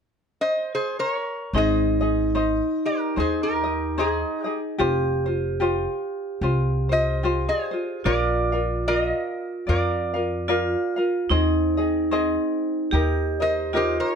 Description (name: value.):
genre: Hawaiian.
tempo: 74 BPM.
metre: 4/4.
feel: swing 58% on 8ths.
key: Ab major.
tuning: A4 = 445 Hz.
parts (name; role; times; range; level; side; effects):
lap resonator guitar; melody; 0.4-14.2 s; Eb4 to Eb5; -25 LUFS; equal; plate reverb.
vibraphone with hard mallets; second line; 1.5-14.2 s; Eb4 to G4; -26 LUFS; right 2 dB; none.
tenor ukulele; accompaniment; 1.5-14.2 s; C4 to F5; -27 LUFS; left 3 dB; none.
upright bass; bass; 1.5-14.0 s; F1 to F2; -26 LUFS; equal; none.
room: light reverb.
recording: none.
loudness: -21 LUFS.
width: side -6 dB against mid.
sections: 0.0-1.5 A section; 1.5-14.2 B section.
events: none.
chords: 0.0 Ab (rootless); 1.5 Ab; 4.8 Fsus2; 8.0 Bb; 11.3 Ab/Eb; 12.9 Eb.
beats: 0.73 | 1.54 2.36 3.17 3.98 | 4.80 5.61 6.42 7.24 | 8.05 8.86 9.67 10.49 | 11.30 12.11 12.93 13.74.